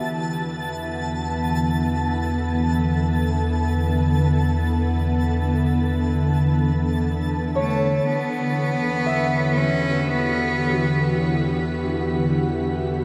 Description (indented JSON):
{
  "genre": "ambient",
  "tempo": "free time",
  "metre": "none",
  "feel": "none",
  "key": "E dorian",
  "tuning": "A4 = 438 Hz",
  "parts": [
    { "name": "ethereal airy pad", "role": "sustained chords", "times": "0.0-13.0 s", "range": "D3 to A4", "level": "-26 LUFS", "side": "equal", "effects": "ensemble chorus, built-in reverb" },
    { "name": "Celtic harp", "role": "arpeggios", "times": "0.0-0.8, 7.6-12.5 s", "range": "C#5 to E5", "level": "-32 LUFS", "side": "equal", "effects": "tape echo" },
    { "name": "organ-like drone", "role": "drone", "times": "0.0-13.0 s", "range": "E3 to B3", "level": "-30 LUFS", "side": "equal", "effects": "ensemble chorus, built-in reverb" },
    { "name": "twinkling granular texture", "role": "texture", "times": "0.0-8.1 s", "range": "A5", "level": "-35 LUFS", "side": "equal", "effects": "built-in reverb" },
    { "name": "warm sub bass", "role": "bass", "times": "0.1-13.0 s", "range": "E2", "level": "-28 LUFS", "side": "equal", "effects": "none" },
    { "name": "bright cello", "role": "melody", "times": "7.6-11.6 s", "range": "A3 to C#4", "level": "-27 LUFS", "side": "equal", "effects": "tape echo" }
  ],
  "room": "wet shimmer reverb, RT60 7.5 s",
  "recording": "none",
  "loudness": "-22 LUFS",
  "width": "mono",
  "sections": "0.0-8.1 A section; 8.1-13.0 B section",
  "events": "filter sweep on ambient pad 8.1-13.0",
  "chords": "0.1 Bm11/E; 8.1 Em9"
}